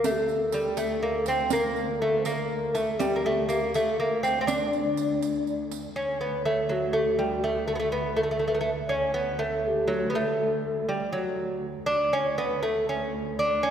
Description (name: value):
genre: Persian modal ensemble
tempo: 81 BPM (dotted quarters)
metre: 6/8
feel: straight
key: D dastgah shur, D dastgah mahur from 6.0 s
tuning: A4 = 440 Hz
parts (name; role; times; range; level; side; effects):
- lute; melody; 0.0-13.7 s; F#3 to D4; -26 LUFS; right 1 dB; none
- mellow hollow low ney; second line; 0.0-13.7 s; F#4 to D5; -30 LUFS; left 3 dB; none
- warm symphonic cello section; drone; 0.0-13.7 s; D2; -35 LUFS; right 3 dB; none
- riq; percussion; 0.0-5.8 s; none; -36 LUFS; right 5 dB; none
room: wet scoring stage reverb, RT60 1.9 s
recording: recorded in a church or concert hall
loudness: -24 LUFS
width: side -8 dB against mid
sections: 0.0-6.0 A section; 6.0-13.7 B section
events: none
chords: none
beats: | 0.04 0.78 | 1.52 2.26 | 3.00 3.74 | 4.48 5.22 | 5.97 6.71 | 7.45 8.19 | 8.93 9.67 | 10.41 11.15 | 11.89 12.63 | 13.38